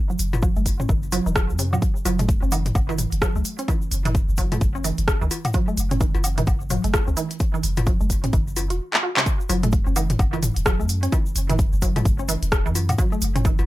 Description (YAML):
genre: minimal techno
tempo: 129 BPM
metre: 4/4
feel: swing 60% on 16ths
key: F# minor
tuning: A4 = 435 Hz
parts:
  - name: resonant blip pluck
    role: riff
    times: 0.1-13.5 s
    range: C#3 to F#4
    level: -28 LUFS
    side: right 2 dB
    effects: chorus, sidechain pumping, tape echo
  - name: egg shaker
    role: percussion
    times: 0.1-13.7 s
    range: none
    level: -35 LUFS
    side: left 4 dB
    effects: none
  - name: punchy sub bass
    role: bass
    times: 0.2-13.7 s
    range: E1 to F#2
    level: -24 LUFS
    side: equal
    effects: sidechain pumping
  - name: minimal click drum kit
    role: drums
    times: 0.2-13.6 s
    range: handclaps, hi-hat, rim click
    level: -26 LUFS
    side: equal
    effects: overdrive
  - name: electronic toms, cowbell and woodblock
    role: percussion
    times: 0.3-13.7 s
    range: none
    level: -27 LUFS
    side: left 2 dB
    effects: tape echo
  - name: electronic kick drum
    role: drums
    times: 0.4-13.6 s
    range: none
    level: -22 LUFS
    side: equal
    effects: none
room: little or no reverb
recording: none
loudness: -19 LUFS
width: side -16 dB against mid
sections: 0.0-9.3 A section; 9.3-13.7 B section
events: drum fill 8.9-9.3; drop 9.3-13.7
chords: 0.0 F#5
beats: 0.43 0.89 1.36 | 1.82 2.29 2.75 3.22 | 3.68 4.15 4.61 5.08 | 5.54 6.01 6.47 6.94 | 7.40 7.87 8.33 8.80 | 9.26 9.73 10.19 10.66 | 11.12 11.59 12.05 12.52 | 12.98 13.45